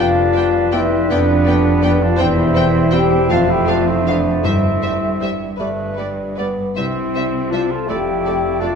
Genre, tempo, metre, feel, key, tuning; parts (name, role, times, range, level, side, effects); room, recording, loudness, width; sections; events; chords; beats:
classical; 50-56 BPM (dotted quarters); 6/8; rubato; C major; A4 = 438 Hz
warm studio violin section; melody; 0.0-8.7 s; D5 to G5; -28 LUFS; left 4 dB
clear clarinet; second line; 0.0-8.8 s; B4 to D5; -28 LUFS; left 5 dB
mellow cor anglais; second line; 0.0-8.8 s; B3 to F4; -26 LUFS; right 2 dB
mellow hollow flute section; second line; 0.0-8.8 s; D5 to A5; -25 LUFS; left 1 dB
rich studio violin section; second line; 0.0-8.7 s; A4 to D5; -30 LUFS; equal
mellow bassoon; accompaniment; 0.0-8.8 s; G3 to B3; -25 LUFS; right 3 dB
warm studio viola section; accompaniment; 0.0-8.7 s; G3 to C4; -30 LUFS; right 1 dB
mellow French horn section; sustained chords; 0.0-8.8 s; D4 to A4; -19 LUFS; left 3 dB
concert harp; arpeggios; 0.0-8.8 s; E2 to D5; -28 LUFS; left 4 dB
warm studio cello section; bass; 0.0-8.8 s; E2 to C3; -24 LUFS; right 3 dB
warm studio double bass section; bass; 0.0-8.8 s; E1 to C2; -22 LUFS; right 2 dB
timpani; percussion; 4.4-5.5 s; G2; -22 LUFS; left 1 dB
wet recital hall reverb, RT60 1.6 s; minimal, uncompressed stereo recording; -14 LUFS; side -6 dB against mid
0.0-8.8 A section
0.0 G7/F; 2.2 C/E; 3.3 Dm7/F; 4.4 C/G; 5.6 G; 6.8 C; 7.9 Dm/F
1.11 | 2.20 3.30 | 4.44 5.59 | 6.77 7.88